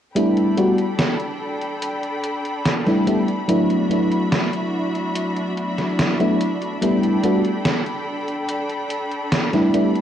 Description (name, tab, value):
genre	vaporwave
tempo	72 BPM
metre	4/4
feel	straight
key	unclear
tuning	A4 = 435 Hz
part	FM electric piano with soft pad layer	accompaniment	0.1-9.9 s	F#3 to F#4	-19 LUFS	equal	wide subtle chorus, cassette tape, tape echo
part	clear symphonic string section	sustained chords	0.2-10.0 s	D4 to B5	-26 LUFS	equal	none
part	gated 80s digital drum machine	drums	0.2-10.0 s	hi-hat, snare drum	-23 LUFS	equal	gated reverb, gated reverb snare, studio reverb
room	moderate plate reverb, RT60 2.7 s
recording	cassette tape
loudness	-18 LUFS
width	side -9 dB against mid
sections	0.2-10.0 A section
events	none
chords	0.2 A9sus4; 3.5 D69; 6.8 A9sus4